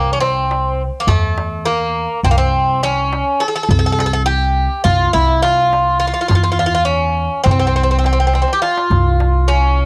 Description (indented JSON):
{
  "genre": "Turkish makam ensemble",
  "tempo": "207 BPM (eighths)",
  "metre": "9/8",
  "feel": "straight",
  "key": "C makam hicaz",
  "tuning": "A4 = 440 Hz",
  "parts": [
    { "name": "Greek bouzouki", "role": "melody", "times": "0.0-9.9 s", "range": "A3-40c to A4-40c", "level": "-18 LUFS", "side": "equal", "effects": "cassette tape" },
    { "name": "upright bass", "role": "bass", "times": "0.0-9.9 s", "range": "C2 to E2", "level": "-20 LUFS", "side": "equal", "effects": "none" },
    { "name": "darbuka", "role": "percussion", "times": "0.2-9.9 s", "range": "none", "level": "-22 LUFS", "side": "equal", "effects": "none" }
  ],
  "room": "light reverb, studio ambience",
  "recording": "home recording on cassette",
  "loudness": "-15 LUFS",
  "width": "mono",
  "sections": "0.0-9.9 A section",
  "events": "drum fill 8.3-8.9",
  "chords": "none"
}